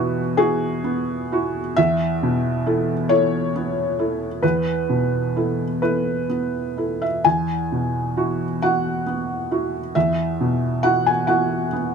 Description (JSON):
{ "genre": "neoclassical minimalist piano", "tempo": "44 BPM (dotted quarters)", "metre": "6/8", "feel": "uneven beats, rubato", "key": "E major", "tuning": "A4 = 442 Hz", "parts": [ { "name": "felt-muted upright piano", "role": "solo", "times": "0.0-11.9 s", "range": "E2 to G#5", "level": "-19 LUFS", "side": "equal", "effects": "none" } ], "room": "little or no reverb", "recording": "close, detailed microphones", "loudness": "-19 LUFS", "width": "side -6 dB against mid", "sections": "0.0-11.9 A section", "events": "none", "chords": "0.0 Eadd9; 1.8 Asus2/E; 7.2 Eadd9", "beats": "0.37 | 1.77 3.10 | 4.43 5.82 | 7.24 8.61 | 9.95 11.27" }